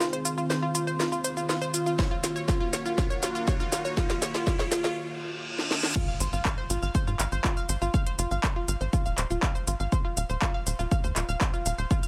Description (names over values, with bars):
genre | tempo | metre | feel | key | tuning
melodic techno | 121 BPM | 4/4 | straight | unclear | A4 = 436 Hz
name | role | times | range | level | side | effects
sweeping resonant pad | sustained chords | 0.0-5.9 s | Eb3 to Ab4 | -37 LUFS | equal | chorus, sidechain pumping
analog pluck | arpeggios | 0.0-12.1 s | F4 to F6 | -34 LUFS | equal | chorus, cassette tape, sidechain pumping, dub echo
techno drum kit | drums | 0.0-12.1 s | crash cymbal, handclaps, hi-hat, shaker, snare drum | -34 LUFS | equal | overdrive
riser, reverse cymbal and impact | sound effects | 0.9-7.9 s | none | -40 LUFS | equal | none
electronic kick drum | drums | 2.0-12.0 s | none | -29 LUFS | equal | overdrive
tight sequencer bass | bass | 6.2-11.9 s | Eb1 to Ab2 | -32 LUFS | equal | sidechain pumping
room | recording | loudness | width
light reverb | none | -28 LUFS | mono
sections
0.0-6.0 A section; 6.0-12.1 B section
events
build-up 0.0-6.0; drum fill 0.0-5.0, 5.6-6.0; filter sweep on analog synth pad 0.0-6.0; reverse cymbal 5.0-6.0; drop 6.0-12.1; impact 6.0-7.9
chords
0.0 Ab; 2.0 Ebm; 6.0 Ab; 9.9 Eb5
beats
| 0.01 0.50 1.00 1.49 | 1.99 2.48 2.98 3.48 | 3.97 4.47 4.96 5.46 | 5.96 6.45 6.95 7.44 | 7.94 8.44 8.93 9.43 | 9.92 10.42 10.91 11.41 | 11.91